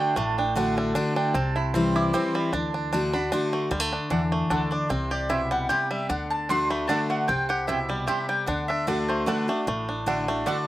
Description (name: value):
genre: bluegrass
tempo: 151 BPM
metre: 3/4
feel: swing 54% on 8ths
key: D mixolydian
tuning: A4 = 445 Hz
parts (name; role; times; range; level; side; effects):
- picked steel-string acoustic guitar; accompaniment; 0.0-10.7 s; A2 to F#4; -27 LUFS; left 2 dB; none
- bluegrass banjo; arpeggios; 0.0-10.7 s; G3 to G4; -29 LUFS; right 1 dB; slapback echo
- mandolin; stabs; 0.0-10.6 s; A3 to D6; -30 LUFS; right 6 dB; slapback echo
- upright bass; bass; 0.2-10.4 s; A1 to E2; -33 LUFS; equal; none
- mandolin; melody; 4.5-10.7 s; A4 to C6; -28 LUFS; left 1 dB; none
room: little or no reverb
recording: recorded outdoors, with no room sound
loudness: -23 LUFS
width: side -14 dB against mid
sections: 0.0-3.7 A section; 3.7-10.7 B section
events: mandolin solo 0.0-3.7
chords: 0.0 D; 1.4 C; 2.5 D; 4.9 C; 6.1 D; 7.3 C; 8.5 D